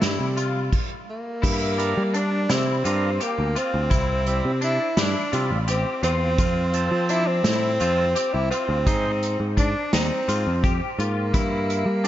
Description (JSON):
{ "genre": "progressive instrumental, band music in an uneven meter", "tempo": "170 BPM (eighths)", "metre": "7/8", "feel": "straight", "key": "G dorian", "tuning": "A4 = 440 Hz", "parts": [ { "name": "breathy tenor saxophone", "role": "melody", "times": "0.0-12.1 s", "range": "G3 to E4", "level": "-26 LUFS", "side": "equal", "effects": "slapback echo, tape echo" }, { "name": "semi-hollow electric guitar", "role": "arpeggios", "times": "0.0-12.1 s", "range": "D4 to G4", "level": "-30 LUFS", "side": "left 4 dB", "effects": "ensemble chorus, slapback echo, tape echo" }, { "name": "picked electric bass", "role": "bass", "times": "0.0-12.1 s", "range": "A1 to G3", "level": "-24 LUFS", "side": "equal", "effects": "none" }, { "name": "unplugged drum kit", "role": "drums", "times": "0.0-12.1 s", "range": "crash cymbal, hi-hat, kick drum, snare drum", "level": "-25 LUFS", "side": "equal", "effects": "none" }, { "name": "tube shaker", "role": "percussion", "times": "1.4-12.1 s", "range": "none", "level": "-47 LUFS", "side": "right 4 dB", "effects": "none" }, { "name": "overdriven tonewheel organ", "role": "accompaniment", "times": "1.8-12.1 s", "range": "C3 to C5", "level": "-32 LUFS", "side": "right 3 dB", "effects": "slapback echo" } ], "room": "moderate lush hall reverb, RT60 2.9 s", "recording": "big arena sound, nothing above 7.6 kHz", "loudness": "-20 LUFS", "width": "side -12 dB against mid", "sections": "0.0-1.4 A section; 1.4-12.1 B section", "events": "stop 0.7-1.4", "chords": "0.0 C; 1.4 Gm; 3.9 C; 6.4 F; 8.9 Ab; 11.3 Gm" }